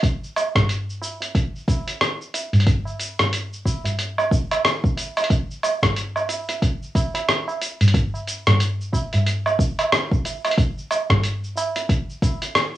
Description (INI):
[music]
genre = downtempo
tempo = 91 BPM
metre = 4/4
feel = swing 59% on 16ths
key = none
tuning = none
[part]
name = dusty soul sampler-style drum kit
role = drums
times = 0.0-12.7 s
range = hi-hat, rim click, shaker, woodblock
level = -22 LUFS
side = right 1 dB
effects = none
[part]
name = electronic kick drum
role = drums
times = 0.0-12.4 s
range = none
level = -21 LUFS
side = equal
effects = none
[part]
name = tabla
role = percussion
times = 0.6-12.5 s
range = none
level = -23 LUFS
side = equal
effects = none
[sound]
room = moderate studio reverb, RT60 0.5 s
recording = home recording on cassette, small room ambience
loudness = -19 LUFS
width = side -14 dB against mid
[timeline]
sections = 0.0-12.8 A section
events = kick drops out 7.3-7.9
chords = none